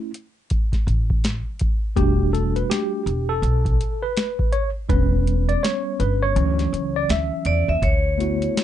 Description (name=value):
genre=hip hop, jazz-hop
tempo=82 BPM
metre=4/4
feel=swing 62% on 16ths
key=unclear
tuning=A4 = 439 Hz
part: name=tine electric piano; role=accompaniment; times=0.0-8.6 s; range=E3 to E5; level=-23 LUFS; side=equal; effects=overdrive, fast stereo tremolo
part: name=booming analog drum machine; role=drums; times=0.1-8.6 s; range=hi-hat, kick drum, snare drum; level=-22 LUFS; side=equal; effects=none
part: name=upright bass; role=bass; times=0.9-8.5 s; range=E1 to E2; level=-22 LUFS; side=equal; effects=none
part: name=vibraphone with hard mallets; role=melody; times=7.5-8.6 s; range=C#5 to E5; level=-23 LUFS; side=equal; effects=none
room=little or no reverb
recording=dark, warm production, nothing above 10.3 kHz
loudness=-19 LUFS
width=side -11 dB against mid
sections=0.0-7.8 A section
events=tine electric piano solo 0.0-7.8; kick muted 6.4-7.8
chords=0.0 N.C.; 2.0 Em11; 4.9 Em6; 6.4 Dmaj9; 7.8 D69